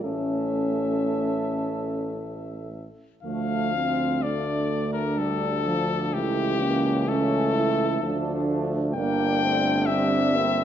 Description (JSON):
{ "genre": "classical, hymn-like piece for brass band", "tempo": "55-65 BPM", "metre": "3/4", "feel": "rubato", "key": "D minor", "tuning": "A4 = 441 Hz", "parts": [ { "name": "warm cornet", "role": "melody", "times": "0.0-10.6 s", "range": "G4 to G5", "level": "-28 LUFS", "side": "left 6 dB", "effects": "none" }, { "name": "mellow French horn section", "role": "second line", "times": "0.0-10.6 s", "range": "A3 to A4", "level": "-29 LUFS", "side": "right 5 dB", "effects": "none" }, { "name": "mellow trombone", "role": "accompaniment", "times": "0.0-10.6 s", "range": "F3 to D4", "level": "-30 LUFS", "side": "right 3 dB", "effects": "none" }, { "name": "warm euphonium", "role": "accompaniment", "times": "0.0-10.5 s", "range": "E3 to C#4", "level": "-31 LUFS", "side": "left 2 dB", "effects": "none" }, { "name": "warm tuba", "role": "bass", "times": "0.0-10.6 s", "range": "G1 to D2", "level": "-29 LUFS", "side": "equal", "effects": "none" } ], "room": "moderate recital hall reverb, RT60 1.7 s", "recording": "dark, warm production, nothing above 7.7 kHz", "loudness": "-22 LUFS", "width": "side -10 dB against mid", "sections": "0.0-3.2 A section; 3.2-10.6 B section", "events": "none", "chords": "0.0 A; 3.2 Dm; 6.1 A7/C#; 8.0 Dm; 9.0 Gm", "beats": "| 0.04 1.11 2.18 | 3.24 4.23 5.19 | 6.14 7.09 8.02 | 8.96 9.88" }